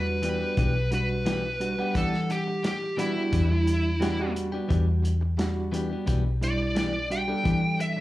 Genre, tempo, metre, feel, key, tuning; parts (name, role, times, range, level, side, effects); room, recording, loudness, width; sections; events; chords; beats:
straight-eighth soul blues; 87 BPM; 4/4; swing 53% on 16ths; E minor; A4 = 440 Hz
smooth overdriven lead guitar; melody; 0.0-8.0 s; E4 to G5; -29 LUFS; equal; slapback echo
reed electric piano; accompaniment; 0.0-8.0 s; G3 to F#5; -30 LUFS; right 2 dB; fast tremolo, slapback echo
vintage muted fingered electric bass; bass; 0.0-8.0 s; B1 to E3; -27 LUFS; equal
direct-recorded clean electric guitar; stabs; 0.2-8.0 s; E3 to G4; -35 LUFS; left 6 dB; slapback echo
warm soul drum kit; drums; 0.2-8.0 s; hi-hat, kick drum, snare drum; -31 LUFS; equal
small room ambience; live gig heard through the venue's PA, club reverb; -24 LUFS; side -16 dB against mid
0.0-8.0 A section
lead electric guitar solo 0.0-8.0
0.0 Em7
0.57 1.26 | 1.95 2.64 3.33 4.01 | 4.70 5.39 6.08 6.76 | 7.45